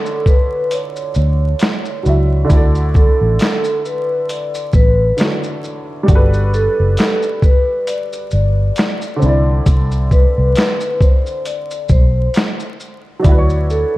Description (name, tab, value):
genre	lo-fi hip hop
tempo	67 BPM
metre	4/4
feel	swing 57% on 16ths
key	unclear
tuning	A4 = 442 Hz
part	vibraphone with soft mallets	melody	0.0-14.0 s	A4 to D5	-20 LUFS	equal	none
part	warm upright piano	accompaniment	0.0-14.0 s	D3 to E5	-22 LUFS	right 1 dB	none
part	boom bap sampler-style drum kit	drums	0.1-13.9 s	handclaps, hi-hat, kick drum, shaker, snare drum	-14 LUFS	equal	vintage 12-bit sampler grit
part	vintage muted fingered electric bass	bass	1.2-13.8 s	F#1 to D2	-14 LUFS	equal	none
room	digital ambience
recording	dark, warm production, vinyl crackle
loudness	-12 LUFS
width	side -17 dB against mid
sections	0.0-14.0 A section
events	none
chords	0.0 Dmaj7; 2.5 Bm11/A; 6.1 Gmaj9; 9.2 Cmaj9; 13.2 Dmaj7